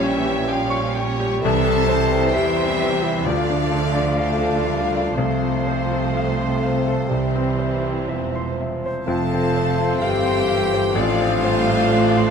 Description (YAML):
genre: classical, romantic movement for piano and orchestra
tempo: 60-66 BPM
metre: 4/4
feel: rubato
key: F major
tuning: A4 = 438 Hz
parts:
  - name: clear concert grand piano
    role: melody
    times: 0.0-12.3 s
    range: A1 to Db6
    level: -24 LUFS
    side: left 2 dB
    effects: none
  - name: rich studio violin section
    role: melody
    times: 0.0-12.3 s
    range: Bb4 to F5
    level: -32 LUFS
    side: left 2 dB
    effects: none
  - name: clear clarinet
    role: second line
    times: 0.0-12.3 s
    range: C5 to D5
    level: -30 LUFS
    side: left 1 dB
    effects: none
  - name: mellow hollow silver concert flute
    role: second line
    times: 0.0-12.3 s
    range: E5 to G5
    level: -30 LUFS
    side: equal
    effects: none
  - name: rich studio violin section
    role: second line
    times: 0.0-12.3 s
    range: C5 to A5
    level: -30 LUFS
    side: equal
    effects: none
  - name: mellow bassoon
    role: accompaniment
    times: 0.0-12.3 s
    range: F3 to A3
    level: -29 LUFS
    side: right 4 dB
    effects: none
  - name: rich studio viola section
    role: accompaniment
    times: 0.0-12.3 s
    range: E3 to D4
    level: -28 LUFS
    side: right 2 dB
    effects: none
  - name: clear French horn section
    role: sustained chords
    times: 0.0-12.3 s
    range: C4 to A4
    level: -24 LUFS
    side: left 6 dB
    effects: none
  - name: clear trombone section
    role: sustained chords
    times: 0.0-11.3 s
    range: E3 to Db4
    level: -32 LUFS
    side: right 4 dB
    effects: none
  - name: rich studio cello section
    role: bass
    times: 0.0-12.3 s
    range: E2 to E3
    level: -28 LUFS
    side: right 3 dB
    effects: none
  - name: rich studio double bass section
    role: bass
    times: 0.0-12.3 s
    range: E1 to E2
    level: -27 LUFS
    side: right 6 dB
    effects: none
room: light reverb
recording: close, detailed microphones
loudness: -18 LUFS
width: side -6 dB against mid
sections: 0.0-12.3 A section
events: none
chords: 0.0 Gm7b5/Bb; 1.4 C; 3.3 Dm; 5.2 F/C; 7.1 C; 9.1 F; 10.9 F/A